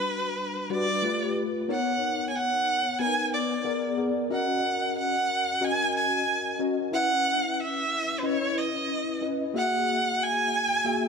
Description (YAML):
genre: pop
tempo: 92 BPM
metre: 4/4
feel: swing 54% on 16ths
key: B major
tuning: A4 = 440 Hz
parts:
  - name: bright erhu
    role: melody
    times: 0.0-11.1 s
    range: B4 to G#5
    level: -26 LUFS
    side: right 2 dB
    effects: none
  - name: mellow tine electric piano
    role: accompaniment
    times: 0.0-11.1 s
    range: G3 to E5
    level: -28 LUFS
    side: left 3 dB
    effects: fast stereo tremolo, ensemble chorus
room: light reverb, studio reverb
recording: none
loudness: -24 LUFS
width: side -5 dB against mid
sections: 0.0-1.7 A section; 1.7-11.1 B section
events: none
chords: 0.0 Gmaj7; 1.0 G9; 1.7 Bmaj9; 3.7 A#7b9; 4.3 D#m7; 6.9 C#m9; 9.5 F#9